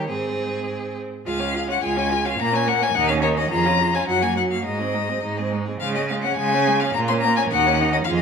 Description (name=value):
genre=quick classical-period movement for string quartet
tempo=106 BPM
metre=2/4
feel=straight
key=Db major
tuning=A4 = 439 Hz
part: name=rich violin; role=melody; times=0.0-8.2 s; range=C5 to C6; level=-22 LUFS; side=left 7 dB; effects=none
part: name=rich violin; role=second line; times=0.0-8.2 s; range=Eb4 to Db5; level=-30 LUFS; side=equal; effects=none
part: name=clear viola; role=accompaniment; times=0.0-8.2 s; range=Gb3 to F4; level=-26 LUFS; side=right 3 dB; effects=none
part: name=rich cello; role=bass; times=0.0-8.2 s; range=Db2 to Eb3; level=-25 LUFS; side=right 5 dB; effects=none
room=wet recital hall reverb, RT60 1.6 s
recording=minimal, uncompressed stereo recording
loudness=-19 LUFS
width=side -6 dB against mid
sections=0.0-1.3 A section; 1.3-8.2 B section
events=none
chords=0.1 Ab; 1.3 Db; 2.4 Bbm; 3.0 Eb5; 3.5 Db/F; 4.1 Ebm/Gb; 4.6 Ab; 5.8 Db; 6.9 Bbm; 7.5 Ebm7